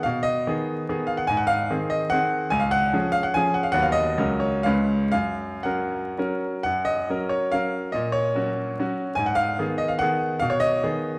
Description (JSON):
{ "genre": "classical, romantic triple-time dance for piano with dotted rhythms", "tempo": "108-156 BPM", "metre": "3/4", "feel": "rubato", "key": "F# major", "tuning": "A4 = 441 Hz", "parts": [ { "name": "bright baby grand piano", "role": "solo", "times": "0.0-11.2 s", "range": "C#2 to G#5", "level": "-24 LUFS", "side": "equal", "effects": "none" } ], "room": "wet recital hall reverb, RT60 1.5 s", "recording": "dark, warm production, vinyl crackle", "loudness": "-24 LUFS", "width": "mono", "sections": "0.0-6.6 A section; 6.6-11.2 A section", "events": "none", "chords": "0.1 G#m/B; 1.3 G#7; 2.5 C#; 3.7 B/D#; 4.2 F#/C#; 4.6 C#7; 5.1 F#; 7.9 F#/A#; 9.2 G#m; 10.4 G#m/B", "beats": "| 0.05 0.46 0.88 | 1.27 1.69 2.11 | 2.51 2.93 3.35 | 3.75 4.17 4.64 | 5.12 5.65 6.17 | 6.64 7.08 7.52 | 7.93 8.36 8.78 | 9.17 9.59 10.01 | 10.42 10.83" }